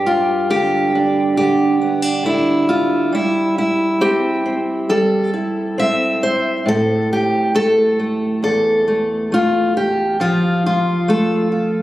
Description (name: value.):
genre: folk, solo fingerstyle acoustic guitar.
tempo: 68 BPM.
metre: 4/4.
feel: straight.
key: C major.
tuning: A4 = 440 Hz.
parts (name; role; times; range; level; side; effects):
fingerpicked steel-string acoustic guitar; solo; 0.0-11.8 s; E2 to E5; -14 LUFS; equal; tape echo.
room: light reverb.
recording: recorded on a phone in the room, club reverb.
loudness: -15 LUFS.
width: side -15 dB against mid.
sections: 0.0-11.8 A section.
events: none.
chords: 0.0 G5; 3.1 C/G; 6.7 A5; 10.2 F.